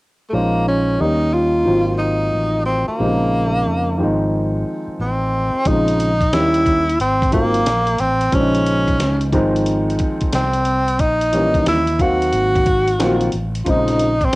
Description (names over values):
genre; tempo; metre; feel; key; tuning
hip hop, jazz-hop; 90 BPM; 4/4; swing 66% on 16ths; Bb minor; A4 = 440 Hz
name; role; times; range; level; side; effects
breathy tenor saxophone; melody; 0.3-14.4 s; A3 to Gb4; -18 LUFS; equal; cassette tape
dark grand piano; accompaniment; 0.3-14.1 s; C3 to F5; -20 LUFS; equal; none
fretless electric bass; bass; 0.3-14.4 s; Ab1 to F2; -22 LUFS; equal; none
dusty soul sampler-style drum kit; drums; 5.7-14.4 s; hi-hat, kick drum, snare drum; -22 LUFS; equal; cassette tape
room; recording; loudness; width
digital ambience; home recording on cassette; -15 LUFS; side -21 dB against mid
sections
0.3-5.7 A section; 5.7-14.4 B section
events
none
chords
0.3 Bbm11; 1.0 Eb7; 1.7 Ab13; 3.0 Bbm11; 4.0 Fm7/Ab; 5.7 Bbm11; 6.3 Eb7b9; 7.0 Ab13; 8.3 Bbm11; 9.3 Fm7/Ab; 11.0 Bbmadd11; 11.7 Eb5; 12.3 Ab13; 13.7 Bbm11